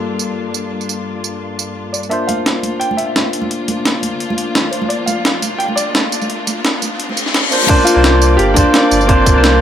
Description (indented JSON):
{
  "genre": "liquid drum and bass",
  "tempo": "172 BPM",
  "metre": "4/4",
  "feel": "swing 53% on 16ths",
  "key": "unclear",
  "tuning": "A4 = 440 Hz",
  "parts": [
    { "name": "barky tine electric piano", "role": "accompaniment", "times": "0.0-9.6 s", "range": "G3 to C5", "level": "-18 LUFS", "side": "equal", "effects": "low-pass filter, ping-pong delay" },
    { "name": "dark chamber string section", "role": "sustained chords", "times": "0.0-9.6 s", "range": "G2 to D5", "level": "-23 LUFS", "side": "left 2 dB", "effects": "vintage 12-bit sampler grit" },
    { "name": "breakbeat sampler-style drum kit", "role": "drums", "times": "0.2-9.5 s", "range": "crash cymbal, hi-hat, snare drum, tambourine", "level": "-17 LUFS", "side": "right 1 dB", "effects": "none" },
    { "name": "dark baby grand piano", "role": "melody", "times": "1.9-9.6 s", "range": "Bb3 to G5", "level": "-18 LUFS", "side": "left 1 dB", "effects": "ping-pong delay" },
    { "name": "riser and reverse cymbal", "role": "sound effects", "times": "5.4-7.7 s", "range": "none", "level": "-22 LUFS", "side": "left 3 dB", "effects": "none" },
    { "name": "congas", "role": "percussion", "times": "2.3-7.7 s", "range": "none", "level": "-25 LUFS", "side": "right 2 dB", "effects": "none" },
    { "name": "warm sub bass", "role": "bass", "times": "2.4-9.6 s", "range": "G1 to C2", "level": "-15 LUFS", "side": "right 1 dB", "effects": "high-pass filter" },
    { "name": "electronic kick drum", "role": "drums", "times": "7.7-9.3 s", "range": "none", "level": "-13 LUFS", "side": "equal", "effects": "none" }
  ],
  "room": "light reverb",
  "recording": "high-pass filter",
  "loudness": "-13 LUFS",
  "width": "side -10 dB against mid",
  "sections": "0.0-2.1 A section; 2.1-7.7 B section; 7.7-9.6 C section",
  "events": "filter sweep on tine electric piano 0.0-2.1, 2.1-7.7; build-up 2.1-7.7; filter sweep 2.1-7.7; riser 5.4-7.7; reverse cymbal 7.0-7.7; drop 7.7-9.6",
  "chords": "0.0 Gm9; 2.1 C9sus4",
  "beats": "0.02 0.37 | 0.72 1.07 1.42 1.76 | 2.11 2.46 2.81 3.16 | 3.51 3.86 4.21 4.55 | 4.90 5.25 5.60 5.95 | 6.30 6.65 7.00 7.34 | 7.69 8.04 8.39 8.74 | 9.09 9.44"
}